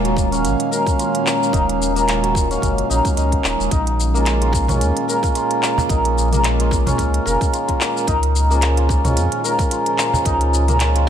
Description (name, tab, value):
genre	organic downtempo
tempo	110 BPM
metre	4/4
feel	swing 56% on 16ths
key	Eb minor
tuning	A4 = 440 Hz
part	pedal harmonium	accompaniment	0.0-11.1 s	F3 to F5	-23 LUFS	right 3 dB	sidechain pumping, ping-pong delay
part	warbly tape-like pad	sustained chords	0.0-11.1 s	Bb2 to F5	-26 LUFS	right 1 dB	chorus, built-in reverb, sidechain pumping
part	santur	arpeggios	0.0-11.1 s	Bb3 to Eb5	-21 LUFS	left 2 dB	vintage 12-bit sampler grit, ping-pong delay
part	warm sub bass	bass	0.0-11.1 s	Eb1 to F2	-19 LUFS	equal	sidechain pumping
part	organic electronic drum kit	drums	0.1-11.1 s	handclaps, hi-hat, shaker, toms	-24 LUFS	equal	none
part	electronic kick drum	drums	0.2-10.4 s	none	-21 LUFS	equal	none
part	cajon	percussion	4.5-11.1 s	none	-26 LUFS	right 2 dB	none
room	light reverb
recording	none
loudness	-15 LUFS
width	side -9 dB against mid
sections	0.0-11.1 A section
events	none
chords	0.0 Ebm7; 3.7 Bbm7; 8.1 Db